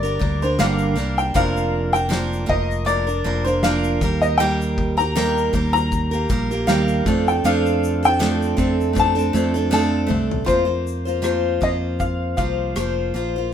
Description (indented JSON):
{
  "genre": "acoustic pop",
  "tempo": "79 BPM",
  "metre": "4/4",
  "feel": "swing 55% on 16ths",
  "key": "unclear",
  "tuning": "A4 = 437 Hz",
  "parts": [
    { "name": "clear upright piano", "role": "melody", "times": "0.0-13.1 s", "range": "C5 to Bb5", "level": "-23 LUFS", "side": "left 2 dB", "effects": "none" },
    { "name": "picked steel-string acoustic guitar", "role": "accompaniment", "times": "0.0-13.5 s", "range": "G2 to C5", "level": "-21 LUFS", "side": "right 2 dB", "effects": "none" },
    { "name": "fingered electric bass", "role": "bass", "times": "0.0-13.5 s", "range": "F1 to F2", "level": "-24 LUFS", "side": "equal", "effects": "none" },
    { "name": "loose indie drum kit", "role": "drums", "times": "0.0-13.3 s", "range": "kick drum, rim click, shaker, snare drum, toms", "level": "-27 LUFS", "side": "left 1 dB", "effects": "none" }
  ],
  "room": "light reverb",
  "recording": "minimal, uncompressed stereo recording",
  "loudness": "-17 LUFS",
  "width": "side -9 dB against mid",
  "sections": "0.0-10.5 A section; 10.5-13.5 B section",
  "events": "drum fill 9.7-10.5",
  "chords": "0.0 Gm; 1.4 Bb/F; 4.0 Eb; 7.1 F6; 10.5 Fsus4",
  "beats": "0.59 | 1.35 2.12 2.88 3.63 | 4.39 5.16 5.92 6.68 | 7.44 8.20 8.96 9.72 | 10.48 11.24 12.01 12.77 | 13.53"
}